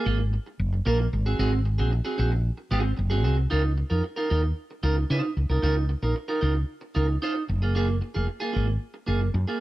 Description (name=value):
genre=disco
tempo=113 BPM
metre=4/4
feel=straight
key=Db major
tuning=A4 = 440 Hz
part: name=clean electric guitar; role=accompaniment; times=0.0-9.6 s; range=Bb3 to C5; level=-28 LUFS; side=right 2 dB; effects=plate reverb
part: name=woody fretless electric bass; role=bass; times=0.1-9.4 s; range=F1 to Db3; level=-24 LUFS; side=equal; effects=tube saturation
room=light reverb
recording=none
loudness=-23 LUFS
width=side -16 dB against mid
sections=0.0-3.5 A section; 3.5-9.6 B section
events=none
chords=0.0 Gbmaj9; 1.1 Ab7; 3.5 Db69; 7.5 Gbmaj9